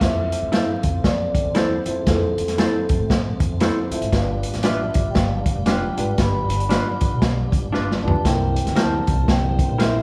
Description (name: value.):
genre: uptempo 1960s-style soul.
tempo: 116 BPM.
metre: 4/4.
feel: swing 60% on 8ths.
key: unclear.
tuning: A4 = 438 Hz.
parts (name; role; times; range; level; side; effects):
vibraphone with soft mallets; melody; 0.0-10.0 s; G#4 to B5; -28 LUFS; equal; none.
dark upright piano; accompaniment; 0.0-9.1 s; C4 to C5; -33 LUFS; equal; none.
tonewheel organ; sustained chords; 0.0-10.0 s; E3 to D4; -34 LUFS; equal; slow rotary speaker, chorus vibrato.
upright bass; bass; 0.0-10.0 s; F1 to A2; -28 LUFS; equal; none.
vintage drum kit; drums; 0.0-9.9 s; hi-hat, kick drum, snare drum, toms; -23 LUFS; equal; none.
semi-hollow electric guitar; stabs; 0.5-10.0 s; D4 to C5; -29 LUFS; equal; spring reverb.
room: wet large studio reverb, RT60 1.1 s.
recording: band playing live in one room, vinyl crackle.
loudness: -20 LUFS.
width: mono.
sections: 0.0-10.0 A section.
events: drum fill 7.7-8.3.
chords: 0.0 Fmaj7; 4.1 G7; 8.3 C7.